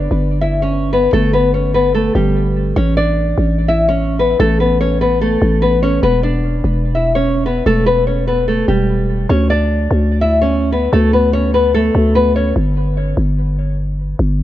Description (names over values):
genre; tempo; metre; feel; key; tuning
hip hop, trap; 147 BPM; 4/4; half-time; unclear; A4 = 440 Hz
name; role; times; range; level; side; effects
nylon-string guitar; melody; 0.0-12.5 s; G3 to E5; -15 LUFS; left 1 dB; low-pass filter, tape echo
growling 808-style bass; bass; 0.0-14.4 s; E1 to D2; -16 LUFS; equal; none
room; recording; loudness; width
small room ambience; none; -12 LUFS; side -13 dB against mid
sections
0.0-14.4 A section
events
break 12.6-14.4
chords
0.0 Gadd9; 2.8 A; 6.0 Em7; 9.3 D5; 12.6 N.C.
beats
0.32 0.72 | 1.13 1.54 1.95 2.36 | 2.76 3.17 3.58 3.99 | 4.40 4.80 5.21 5.62 | 6.03 6.44 6.84 7.25 | 7.66 8.07 8.48 8.89 | 9.29 9.70 10.11 10.52 | 10.93 11.34 11.74 12.15 | 12.56 12.97 13.38 13.78 | 14.19